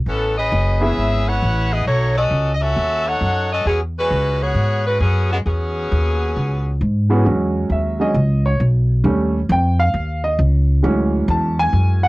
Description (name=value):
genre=jazz, big band swing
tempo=134 BPM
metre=4/4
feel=swing 67% on 8ths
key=E major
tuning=A4 = 439 Hz
part: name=upright bass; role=bass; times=0.0-12.1 s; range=F#1 to G#2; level=-18 LUFS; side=equal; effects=transformer saturation
part: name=edgy saxophone section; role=melody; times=0.1-6.8 s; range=C#3 to F#5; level=-20 LUFS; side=left 1 dB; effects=cassette tape
part: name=clear baby grand piano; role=accompaniment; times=0.8-1.4, 7.1-12.1 s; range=E3 to A5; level=-19 LUFS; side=right 1 dB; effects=cassette tape
room=light reverb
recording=home recording on cassette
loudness=-16 LUFS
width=side -21 dB against mid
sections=0.0-7.3 A section; 7.3-12.1 B section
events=grand piano solo 7.3-12.1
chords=0.1 Amaj9; 1.9 B9; 3.7 E69; 9.0 D#7#11; 10.8 Dmaj9#11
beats=| 0.06 0.51 0.96 1.41 | 1.86 2.31 2.76 3.21 | 3.66 4.11 4.56 5.01 | 5.46 5.91 6.36 6.80 | 7.25 7.70 8.15 8.60 | 9.04 9.49 9.94 10.38 | 10.83 11.28 11.72